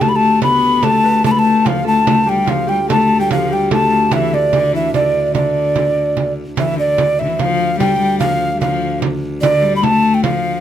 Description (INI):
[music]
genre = medieval dance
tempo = 147 BPM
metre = 3/4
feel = straight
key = D dorian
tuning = A4 = 440 Hz
[part]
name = breathy bright alto ocarina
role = melody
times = 0.0-10.6 s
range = D5 to B5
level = -15 LUFS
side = equal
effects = none
[part]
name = Celtic harp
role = second line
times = 0.0-8.2 s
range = D4 to B4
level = -24 LUFS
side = right 2 dB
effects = none
[part]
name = rich viola da gamba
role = second line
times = 0.0-10.6 s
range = D3 to B3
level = -18 LUFS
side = left 4 dB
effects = none
[part]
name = rich viola da gamba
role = drone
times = 0.0-10.6 s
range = D2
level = -25 LUFS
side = equal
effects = none
[part]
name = frame drum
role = percussion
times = 0.0-10.4 s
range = none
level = -21 LUFS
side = right 5 dB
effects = none
[sound]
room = light reverb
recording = none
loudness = -12 LUFS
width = side -10 dB against mid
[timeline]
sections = 0.0-6.6 A section; 6.6-10.6 A section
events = none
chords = none